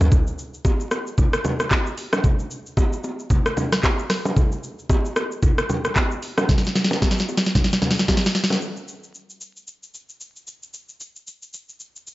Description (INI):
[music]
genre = amapiano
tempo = 113 BPM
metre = 4/4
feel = swing 58% on 16ths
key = none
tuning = none
[part]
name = afro-pop drum kit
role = drums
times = 0.0-12.1 s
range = handclaps, hi-hat, kick drum, rim click, shaker, snare drum, toms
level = -20 LUFS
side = equal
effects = none
[part]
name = bongos and congas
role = percussion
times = 0.0-8.6 s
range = none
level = -25 LUFS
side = equal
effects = none
[sound]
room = little or no reverb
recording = vinyl crackle, nothing above 7.7 kHz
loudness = -19 LUFS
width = side -17 dB against mid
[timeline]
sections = 0.0-8.6 A section; 8.6-12.1 B section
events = drop 0.0-8.6; drum fill 6.5-8.6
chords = none